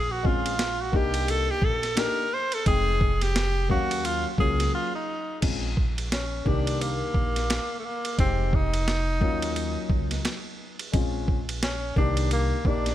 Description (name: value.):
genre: hip hop, jazz-hop.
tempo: 87 BPM.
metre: 4/4.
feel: swing 59% on 16ths.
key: Bb minor.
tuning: A4 = 442 Hz.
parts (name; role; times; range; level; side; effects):
breathy tenor saxophone; melody; 0.0-12.9 s; A3 to C5; -28 LUFS; equal; tape echo.
upright bass; bass; 0.0-12.9 s; F1 to Eb2; -29 LUFS; equal; none.
dark grand piano; accompaniment; 0.2-12.9 s; Eb3 to G5; -32 LUFS; left 5 dB; none.
boom bap sampler-style drum kit; drums; 0.2-12.9 s; crash cymbal, hi-hat, kick drum, ride cymbal, snare drum; -27 LUFS; equal; none.
room: little or no reverb.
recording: none.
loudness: -23 LUFS.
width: side -13 dB against mid.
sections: 0.0-5.4 A section; 5.4-12.9 B section.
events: tenor saxophone solo 0.0-5.4; break 4.7-5.4.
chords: 0.0 Bbm9; 0.9 Cm9; 2.7 Fm9; 3.7 Ebm9; 5.4 Bbm9; 6.5 Cm9; 8.2 Fm9; 9.2 Ebm9; 10.9 Bbm9; 12.0 Cm9.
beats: 0.60 1.29 1.98 | 2.67 3.36 4.05 4.74 | 5.42 6.12 6.80 7.49 | 8.18 8.87 9.56 10.25 | 10.94 11.63 12.32.